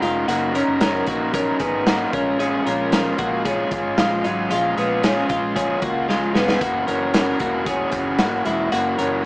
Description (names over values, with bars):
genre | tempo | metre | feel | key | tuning
jangly indie pop | 114 BPM | 4/4 | straight | F# major | A4 = 440 Hz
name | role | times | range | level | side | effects
raw garage guitar | accompaniment | 0.0-9.2 s | F#2 to A#4 | -22 LUFS | right 1 dB | overdrive
twelve-string electric guitar | arpeggios | 0.0-9.2 s | F#3 to A#4 | -21 LUFS | left 1 dB | analog delay
vintage muted fingered electric bass | bass | 0.0-9.3 s | E1 to C#2 | -34 LUFS | equal | none
raw garage drum kit | drums | 0.0-9.1 s | hi-hat, kick drum, snare drum | -23 LUFS | equal | none
room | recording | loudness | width
moderate club reverb, RT60 0.5 s | small speaker sound | -18 LUFS | side -22 dB against mid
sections
0.0-9.3 A section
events
drum fill 6.1-6.6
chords
0.0 F#6; 6.6 F#7